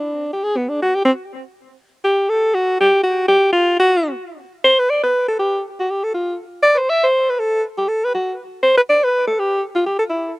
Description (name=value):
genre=jazz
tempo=242 BPM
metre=4/4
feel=swing 57% on 8ths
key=G major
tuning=A4 = 441 Hz
part: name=warm alto saxophone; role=solo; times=0.0-10.3 s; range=B3 to E5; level=-15 LUFS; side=equal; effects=slapback echo
room=little or no reverb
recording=recorded outdoors, with no room sound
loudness=-15 LUFS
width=side -22 dB against mid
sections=0.0-4.9 A section; 4.9-10.4 B section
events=alto saxophone solo 0.0-4.9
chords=none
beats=0.16 0.41 0.66 | 0.90 1.15 1.40 1.65 | 1.90 2.14 2.39 2.64 | 2.89 3.13 3.38 3.63 | 3.88 4.13 4.38 4.62 | 4.87 5.12 5.37 5.62 | 5.87 6.12 6.37 6.62 | 6.87 7.11 7.36 7.61 | 7.86 8.11 8.36 8.61 | 8.86 9.10 9.35 9.60 | 9.85 10.10